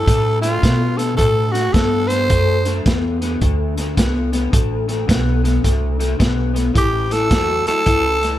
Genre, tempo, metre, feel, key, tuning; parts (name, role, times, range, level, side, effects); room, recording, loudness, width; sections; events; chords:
electric blues shuffle; 108 BPM; 4/4; swing 64% on 8ths; D mixolydian; A4 = 440 Hz
growling tenor saxophone; melody; 0.0-2.8, 6.8-8.4 s; F4 to C5; -18 LUFS; right 1 dB
electric guitar through a small old amp; riff; 0.0-8.4 s; A2 to B3; -21 LUFS; left 4 dB; ensemble chorus
upright bass; bass; 0.0-8.4 s; A1 to B2; -20 LUFS; right 1 dB
crunchy breakbeat drum kit; drums; 0.1-8.3 s; hi-hat, kick drum, snare drum; -19 LUFS; right 1 dB
little or no reverb; -15 LUFS; side -13 dB against mid
0.0-8.4 A section
0.1 D7(no3); 6.8 A7